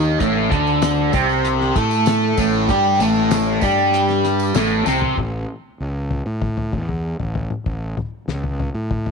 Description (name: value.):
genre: psychedelic rock.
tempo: 96 BPM.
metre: 4/4.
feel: straight.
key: unclear.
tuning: A4 = 440 Hz.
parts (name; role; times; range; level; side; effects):
fuzz guitar; riff; 0.0-5.2 s; A2 to A4; -16 LUFS; equal; distortion, phaser.
fuzz fingered electric bass; bass; 0.0-9.1 s; A1 to A2; -23 LUFS; equal; overdrive.
tambourine; percussion; 0.1-5.0 s; none; -36 LUFS; right 18 dB; none.
cloth-damped thuddy drum kit; drums; 0.2-9.1 s; hi-hat, kick drum, snare drum, toms; -24 LUFS; left 3 dB; none.
room: light reverb.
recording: 1960s-style stereo.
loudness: -17 LUFS.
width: side -5 dB against mid.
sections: 0.0-5.2 A section; 5.2-9.1 B section.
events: drum fill 4.9-5.2.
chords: 0.0 Amadd11; 5.2 A.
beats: | 0.20 0.82 1.44 2.06 | 2.69 3.31 3.93 4.55 | 5.17 5.79 6.41 7.04 | 7.66 8.28 8.91.